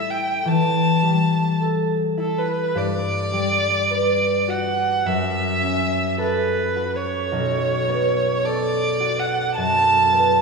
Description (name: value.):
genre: classical, impressionist duo for violin and harp.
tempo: 53 BPM.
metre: 4/4.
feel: rubato.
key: unclear.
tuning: A4 = 440 Hz.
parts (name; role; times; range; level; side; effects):
rich violin; melody; 0.0-10.4 s; A4 to A5; -21 LUFS; right 2 dB; none.
concert harp; accompaniment; 0.0-10.4 s; B1 to B4; -21 LUFS; left 1 dB; none.
room: wet scoring stage reverb, RT60 2.0 s.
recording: heard from further back in the room, small room ambience.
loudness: -18 LUFS.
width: side -4 dB against mid.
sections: 0.0-10.4 A section.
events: none.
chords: 0.0 A7(no3); 2.8 Gmaj7; 5.1 F#m7; 7.3 Bsus2.